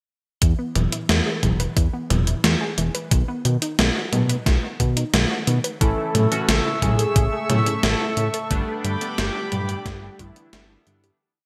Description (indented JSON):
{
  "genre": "synthwave",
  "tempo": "89 BPM",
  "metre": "4/4",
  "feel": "straight",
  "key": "unclear",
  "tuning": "A4 = 440 Hz",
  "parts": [
    { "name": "unison pluck", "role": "arpeggios", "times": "0.4-11.2 s", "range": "C#3 to B4", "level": "-33 LUFS", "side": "equal", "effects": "digital delay" },
    { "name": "fat analog bass", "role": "bass", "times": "0.4-11.1 s", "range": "E1 to B2", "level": "-24 LUFS", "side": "equal", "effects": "none" },
    { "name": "electronic kick drum", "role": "drums", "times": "0.4-10.3 s", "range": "none", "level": "-24 LUFS", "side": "equal", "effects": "overdrive" },
    { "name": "gated 80s digital drum machine", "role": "drums", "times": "0.4-11.2 s", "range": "hi-hat, snare drum, toms", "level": "-25 LUFS", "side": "equal", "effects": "gated reverb, gated reverb snare, overdrive" },
    { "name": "unison lead", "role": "melody", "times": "5.8-11.1 s", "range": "E4 to A4", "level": "-31 LUFS", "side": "equal", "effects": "delay" },
    { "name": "chorused pulse-width pad", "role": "sustained chords", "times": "5.8-11.2 s", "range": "A3 to E6", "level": "-30 LUFS", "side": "equal", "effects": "sidechain pumping" },
    { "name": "chorused polysynth", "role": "stabs", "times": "5.8-11.2 s", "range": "E3 to F#4", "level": "-33 LUFS", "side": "equal", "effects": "digital delay" }
  ],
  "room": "moderate lush hall reverb, RT60 1.7 s",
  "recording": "bright 1980s-style digital production",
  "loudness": "-21 LUFS",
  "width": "mono",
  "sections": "0.4-11.2 verse",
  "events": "fade-out 7.6-11.2",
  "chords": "0.4 E; 3.1 B; 5.8 A; 8.5 Gadd9",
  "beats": "| 0.42 1.09 1.77 2.44 | 3.12 3.79 4.46 5.14 | 5.81 6.49 7.16 7.83 | 8.51 9.18 9.86 10.53"
}